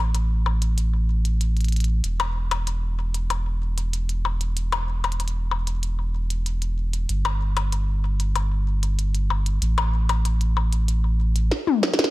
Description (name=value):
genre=IDM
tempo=95 BPM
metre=4/4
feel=straight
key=unclear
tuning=A4 = 440 Hz
part: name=warm sub bass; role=bass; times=0.0-11.5 s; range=E1 to A1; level=-22 LUFS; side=equal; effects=tube saturation
part: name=glitchy drum kit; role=drums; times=0.1-12.1 s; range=hi-hat, percussion blips, snare drum, toms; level=-25 LUFS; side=left 4 dB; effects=digital delay
room=little or no reverb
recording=none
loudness=-21 LUFS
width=side -18 dB against mid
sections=0.0-12.1 A section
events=drum fill 11.5-12.1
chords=none